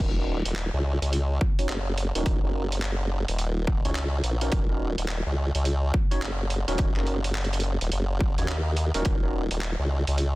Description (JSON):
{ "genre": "glitch hop", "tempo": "106 BPM", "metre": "4/4", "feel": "swing 63% on 16ths", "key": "Eb minor", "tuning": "A4 = 440 Hz", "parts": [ { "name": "overdriven tine electric piano", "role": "stabs", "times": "0.0-9.4 s", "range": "Db4 to Db5", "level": "-34 LUFS", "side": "right 1 dB", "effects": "analog chorus, sidechain pumping, low-pass filter, tape echo" }, { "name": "formant-sweep wobble bass", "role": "bass", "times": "0.0-10.4 s", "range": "Eb1 to Eb2", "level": "-26 LUFS", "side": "equal", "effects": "chorus" }, { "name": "electronic kick drum", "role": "drums", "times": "0.0-9.2 s", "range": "none", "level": "-25 LUFS", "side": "equal", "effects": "overdrive, studio reverb" }, { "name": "boom bap sampler-style drum kit", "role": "drums", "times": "0.5-10.3 s", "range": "handclaps, hi-hat", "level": "-34 LUFS", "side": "right 1 dB", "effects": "studio reverb, soft clipping on snare" } ], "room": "digital ambience", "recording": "dense, heavily limited modern master", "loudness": "-24 LUFS", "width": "side -20 dB against mid", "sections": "0.0-10.4 A section", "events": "filter sweep on tine electric piano 0.0-10.4", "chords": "0.0 Ebm7", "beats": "0.56 1.12 1.69 | 2.26 2.82 3.39 3.96 | 4.52 5.09 5.65 6.22 | 6.79 7.35 7.92 8.48 | 9.05 9.62 10.18" }